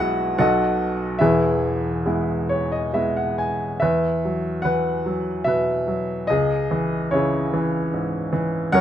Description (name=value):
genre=classical, lyrical solo piano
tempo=66-76 BPM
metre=3/4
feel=rubato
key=E major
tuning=A4 = 440 Hz
part: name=clear baby grand piano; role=solo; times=0.0-8.8 s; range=E1 to G#5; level=-19 LUFS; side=equal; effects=none
room=moderate studio reverb, RT60 0.6 s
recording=none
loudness=-20 LUFS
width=side -10 dB against mid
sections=0.0-3.8 A section; 3.8-8.8 B section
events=grand piano fill 2.1-3.8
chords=0.4 B7; 1.2 E; 3.8 Esus2; 6.3 C#madd9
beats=0.40 | 1.21 2.05 2.93 | 3.82 4.65 5.47 | 6.30 7.13 7.94 | 8.73